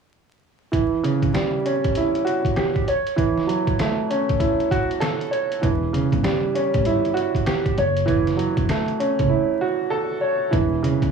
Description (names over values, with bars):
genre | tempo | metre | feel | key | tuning
hip hop, boom-bap hip-hop | 98 BPM | 4/4 | swing 63% on 16ths | E dorian | A4 = 439 Hz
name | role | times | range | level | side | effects
dark grand piano | accompaniment | 0.7-11.1 s | C#3 to C#5 | -20 LUFS | right 2 dB | cassette tape, high-pass filter, low-pass filter
trip hop sampler-style drum kit | drums | 0.7-11.1 s | hi-hat, kick drum, snare drum | -25 LUFS | equal | cassette tape
upright bass | bass | 5.6-11.1 s | E1 to A1 | -24 LUFS | right 1 dB | transformer saturation
room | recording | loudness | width
light reverb | home recording on cassette, vinyl crackle, studio reverb | -19 LUFS | side -6 dB against mid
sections
0.7-10.5 A section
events
none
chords
0.7 Em69; 2.9 F#m7; 5.6 Em69; 7.8 F#m7; 10.5 Em6